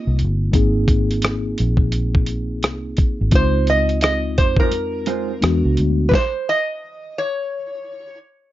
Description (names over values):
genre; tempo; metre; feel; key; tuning
R&B, neo-soul; 86 BPM; 4/4; swing 62% on 16ths; Ab major; A4 = 440 Hz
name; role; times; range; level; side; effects
metal-body resonator slide guitar; melody; 0.0-8.2 s; Bb4 to Eb5; -21 LUFS; right 1 dB; none
mellow tine electric piano; accompaniment; 0.0-6.1 s; Ab3 to Ab4; -23 LUFS; left 2 dB; slow stereo tremolo
vintage muted fingered electric bass; bass; 0.1-6.1 s; G1 to F2; -20 LUFS; equal; none
dusty soul sampler-style drum kit; drums; 0.2-6.3 s; hi-hat, kick drum, rim click, snare drum; -18 LUFS; equal; none
mellow electric guitar; second line; 4.6-5.3 s; Ab3 to C5; -24 LUFS; right 9 dB; none
room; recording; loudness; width
little or no reverb; dark, warm production, nothing above 7.5 kHz; -16 LUFS; side -14 dB against mid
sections
0.0-8.5 A section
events
stop 6.1-8.5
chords
0.0 Ab69; 3.3 Dbmaj9; 5.4 E9; 6.1 N.C.